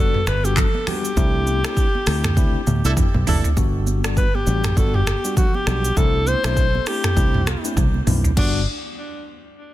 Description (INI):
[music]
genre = afrobeats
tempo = 100 BPM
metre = 4/4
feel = swing 58% on 16ths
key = G major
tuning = A4 = 442 Hz
[part]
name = breathy alto saxophone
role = melody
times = 0.0-8.7 s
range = D4 to C5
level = -25 LUFS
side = left 1 dB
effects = digital delay
[part]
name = mellow tine electric piano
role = accompaniment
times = 0.0-8.6 s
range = G3 to F#4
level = -28 LUFS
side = left 2 dB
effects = slow stereo tremolo
[part]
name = fingered electric bass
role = bass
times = 0.0-8.6 s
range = F#1 to D2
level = -21 LUFS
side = equal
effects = none
[part]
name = afro-pop drum kit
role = drums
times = 0.1-8.5 s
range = crash cymbal, finger snaps, handclaps, hi-hat, kick drum, rim click, shaker, toms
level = -20 LUFS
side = equal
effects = overdrive, soft clipping on snare
[part]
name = congas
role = percussion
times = 0.3-8.6 s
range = none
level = -32 LUFS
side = right 8 dB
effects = none
[part]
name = warm horn section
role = second line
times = 2.8-3.5 s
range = D4 to A4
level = -28 LUFS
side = right 4 dB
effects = none
[sound]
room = digital ambience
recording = dense, heavily limited modern master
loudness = -17 LUFS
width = side -14 dB against mid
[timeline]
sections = 0.0-3.6 A section; 3.6-8.4 B section; 8.4-9.7 C section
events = band accent 1.2-3.6; drum fill 2.4-3.6, 7.8-8.4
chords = 0.0 Gmaj7; 1.2 C69; 3.6 Gmaj7; 6.0 C69; 8.4 Gmaj7